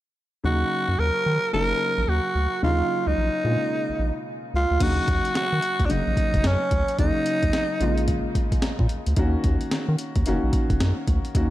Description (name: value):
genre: R&B, new jack swing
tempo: 110 BPM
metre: 4/4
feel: swing 62% on 16ths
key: Eb minor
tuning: A4 = 440 Hz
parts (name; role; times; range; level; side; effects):
- warm baby grand piano; accompaniment; 0.4-11.5 s; Cb3 to Gb4; -28 LUFS; left 1 dB; none
- round analog bass; bass; 0.4-11.5 s; Gb1 to Eb3; -24 LUFS; equal; none
- growling tenor saxophone; melody; 0.5-8.0 s; Db4 to Bb4; -24 LUFS; right 1 dB; tape echo
- breakbeat sampler-style drum kit; drums; 4.8-11.5 s; crash cymbal, hi-hat, kick drum, snare drum; -24 LUFS; equal; none
room: light reverb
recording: none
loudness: -21 LUFS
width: side -15 dB against mid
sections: 0.4-4.8 A section; 4.8-11.5 B section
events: none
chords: 0.4 Ebm7; 1.5 Gb6; 2.6 Ebm7; 3.4 Bbm7; 4.8 Ebm7; 5.9 Gb6; 7.0 Ebm7; 7.8 Bbm7; 9.2 Ebm7; 10.3 Gb6